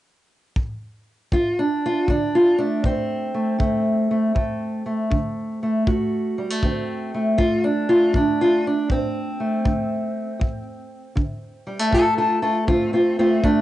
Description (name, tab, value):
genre	acoustic country blues, solo or duo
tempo	79 BPM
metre	4/4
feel	swing 67% on 8ths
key	unclear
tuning	A4 = 440 Hz
part	kick drum	drums	0.6-13.6 s	none	-24 LUFS	equal	none
part	fingerpicked steel-string acoustic guitar	melody	1.3-13.6 s	D2 to A4	-19 LUFS	equal	plate reverb
room	moderate booth ambience, RT60 0.2 s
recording	home recording on cassette, nothing above 10.8 kHz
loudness	-19 LUFS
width	side -14 dB against mid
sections	0.0-1.3 A section; 1.3-13.6 B section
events	none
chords	0.0 N.C.; 1.3 D7(no3)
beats	0.56 | 1.32 2.08 2.83 3.59 | 4.35 5.11 5.87 6.63 | 7.38 8.14 8.90 9.66 | 10.41 11.17 11.93 12.69 | 13.44